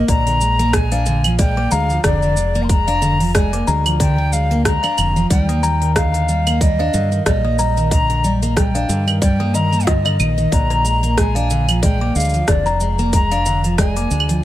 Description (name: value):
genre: folktronica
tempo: 92 BPM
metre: 4/4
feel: swing 56% on 16ths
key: unclear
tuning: A4 = 440 Hz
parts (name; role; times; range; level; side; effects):
- breathy mellow jazz flute; melody; 0.0-14.4 s; D5 to C6; -22 LUFS; left 1 dB; ping-pong delay
- picked steel-string acoustic guitar; arpeggios; 0.0-14.4 s; D3 to D4; -21 LUFS; equal; none
- kalimba; second line; 0.1-14.1 s; D5 to Eb6; -25 LUFS; left 5 dB; vintage 12-bit sampler grit, ping-pong delay
- fingered electric bass; bass; 0.1-14.4 s; F1 to G2; -18 LUFS; equal; tube saturation
- electronic kick drum; drums; 0.1-13.9 s; none; -17 LUFS; equal; none
- organic electronic drum kit; drums; 0.1-14.4 s; claves, hi-hat, rim click, shaker; -22 LUFS; right 1 dB; none
room: little or no reverb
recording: none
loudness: -14 LUFS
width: side -14 dB against mid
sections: 0.1-14.4 A section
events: none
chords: 0.1 Bb7; 5.3 Ebmaj7; 10.5 Bb7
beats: | 0.09 0.74 1.39 2.04 | 2.70 3.35 4.00 4.65 | 5.30 5.96 6.61 7.26 | 7.91 8.57 9.22 9.87 | 10.52 11.18 11.83 12.48 | 13.13 13.78 14.44